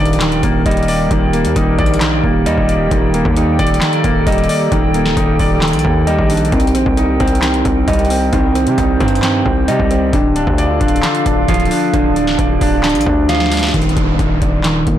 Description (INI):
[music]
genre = hip hop, trap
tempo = 133 BPM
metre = 4/4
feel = half-time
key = unclear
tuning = A4 = 441 Hz
[part]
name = warm baby grand piano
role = accompaniment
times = 0.0-15.0 s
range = D3 to D5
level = -18 LUFS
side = right 1 dB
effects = low-pass filter
[part]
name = warbly tape-like pad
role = sustained chords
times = 0.0-13.7 s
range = Bb3 to G5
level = -21 LUFS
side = equal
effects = chorus, built-in reverb
[part]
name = mellow electric guitar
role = arpeggios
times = 0.0-15.0 s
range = Eb3 to F5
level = -18 LUFS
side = right 1 dB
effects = low-pass filter, ping-pong delay
[part]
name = distorted 808-style bass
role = bass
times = 0.0-15.0 s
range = D1 to C3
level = -19 LUFS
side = equal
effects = distortion
[part]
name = booming analog drum machine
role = drums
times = 0.1-15.0 s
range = handclaps, hi-hat, kick drum, snare drum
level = -18 LUFS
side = equal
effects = overdrive
[part]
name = downlifter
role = sound effects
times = 13.7-15.0 s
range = none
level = -24 LUFS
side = left 2 dB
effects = none
[sound]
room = digital ambience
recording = blown-out, overdriven recording, overdrive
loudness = -12 LUFS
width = side -11 dB against mid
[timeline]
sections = 0.0-13.7 A section; 13.7-15.0 B section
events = drum fill 13.3-13.7; filter sweep 13.7-15.0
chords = 0.0 Ebmaj7; 6.5 Cm7; 10.1 Dm; 13.7 Ebmaj7(no3)